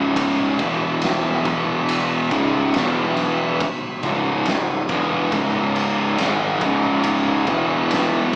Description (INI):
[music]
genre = stoner and doom metal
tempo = 70 BPM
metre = 4/4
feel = straight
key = C# minor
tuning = A4 = 441 Hz
[part]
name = tonewheel organ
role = sustained chords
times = 0.0-8.3 s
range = C#3 to F#4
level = -30 LUFS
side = equal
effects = none
[part]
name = thick fuzz guitar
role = riff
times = 0.0-8.4 s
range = C#2 to G#3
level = -19 LUFS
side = equal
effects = distortion
[part]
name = fuzz picked electric bass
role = bass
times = 0.0-8.4 s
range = C#1 to G#1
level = -27 LUFS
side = equal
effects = overdrive
[part]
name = oversized low-tuned drum kit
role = drums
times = 0.2-8.4 s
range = kick drum, ride cymbal, snare drum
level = -24 LUFS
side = equal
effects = none
[sound]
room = light reverb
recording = band playing live in one room, small speaker sound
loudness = -17 LUFS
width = side -36 dB against mid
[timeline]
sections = 0.0-8.4 A section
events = none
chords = 0.0 C#5; 0.6 E5; 2.3 C#5; 2.7 E5; 4.0 C#m; 7.5 E5